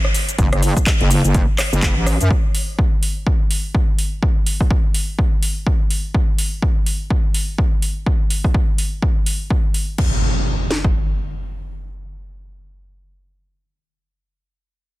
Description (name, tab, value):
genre	bass house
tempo	125 BPM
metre	4/4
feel	swing 58% on 16ths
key	F# minor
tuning	A4 = 443 Hz
part	house drum kit	drums	0.0-10.1 s	crash cymbal, handclaps, hi-hat, rim click, shaker	-23 LUFS	equal	overdrive
part	wobble bass	bass	0.4-2.3 s	F#1 to F#2	-16 LUFS	equal	chorus, overdrive, sidechain pumping
part	house drum kit	drums	0.4-10.9 s	kick drum, snare drum	-17 LUFS	equal	overdrive
part	impact	sound effects	10.0-13.2 s	none	-24 LUFS	equal	none
room	little or no reverb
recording	dense, heavily limited modern master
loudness	-16 LUFS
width	side -18 dB against mid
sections	0.0-10.0 A section; 10.0-13.8 B section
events	none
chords	none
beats	| 0.39 0.86 1.34 1.82 | 2.31 2.79 3.27 3.75 | 4.22 4.71 5.18 5.67 | 6.14 6.62 7.11 7.58 | 8.06 8.54 9.03 9.51 | 9.98 10.46 10.95 11.43 | 11.90 12.38 12.87